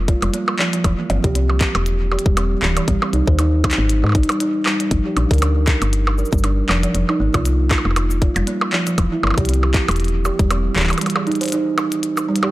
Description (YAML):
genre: IDM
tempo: 118 BPM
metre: 4/4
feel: swing 56% on 16ths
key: unclear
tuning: A4 = 439 Hz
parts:
  - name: woody FM bass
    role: bass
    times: 0.0-10.9 s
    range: D1 to Ab2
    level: -18 LUFS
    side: equal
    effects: none
  - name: kalimba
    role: arpeggios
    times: 0.1-12.5 s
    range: E3 to C5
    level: -21 LUFS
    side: right 2 dB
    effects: tape echo
  - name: electronic kick drum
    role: drums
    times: 0.1-10.5 s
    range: none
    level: -18 LUFS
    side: equal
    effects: none
  - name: glitchy drum kit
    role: drums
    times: 0.1-12.5 s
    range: handclaps, hi-hat, percussion blips, shaker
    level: -22 LUFS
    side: equal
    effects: none
room: light reverb, digital ambience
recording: dry, gritty hardware recording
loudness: -16 LUFS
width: side -17 dB against mid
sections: 0.0-12.5 A section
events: none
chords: 0.0 N.C.; 0.8 C/E; 2.9 Abmaj7; 4.9 Gm7; 6.9 Fsus4; 9.0 C/E; 11.0 Abmaj7